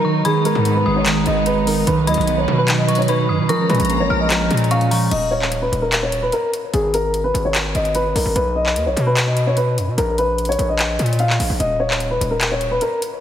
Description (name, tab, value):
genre	hip hop, trap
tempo	148 BPM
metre	4/4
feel	half-time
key	unclear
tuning	A4 = 440 Hz
part	dark baby grand piano	melody	0.0-13.0 s	Ab4 to F5	-20 LUFS	left 1 dB	ping-pong delay
part	dark detuned synth bell	second line	0.0-5.1 s	Bb5 to F6	-25 LUFS	left 3 dB	chorus, ping-pong delay
part	semi-hollow electric guitar	accompaniment	0.0-5.1 s	Eb3 to Eb4	-20 LUFS	right 5 dB	none
part	dark symphonic string section	sustained chords	0.0-5.1 s	Gb3 to Bb5	-25 LUFS	left 2 dB	none
part	trap drum kit	drums	0.2-13.1 s	crash cymbal, handclaps, hi-hat	-23 LUFS	left 1 dB	none
part	distorted 808-style bass	bass	0.6-12.8 s	D#1 to B2	-21 LUFS	left 1 dB	distortion
room	moderate concert hall reverb, RT60 2.0 s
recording	heavily compressed radio sound, multiband compression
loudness	-16 LUFS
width	side -10 dB against mid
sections	0.0-5.1 A section; 5.1-13.2 B section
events	none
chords	0.2 Abm; 1.9 B; 3.5 Bbm7; 5.1 Bmaj9/D# (rootless); 6.7 Abm; 8.4 B; 10.0 Bbsus4; 11.6 Bmaj9/D# (rootless)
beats	| 0.25 0.65 1.06 1.47 | 1.87 2.28 2.68 3.09 | 3.49 3.90 4.30 4.71 | 5.11 5.52 5.92 6.33 | 6.74 7.14 7.55 7.95 | 8.36 8.76 9.17 9.57 | 9.98 10.38 10.79 11.20 | 11.60 12.01 12.41 12.82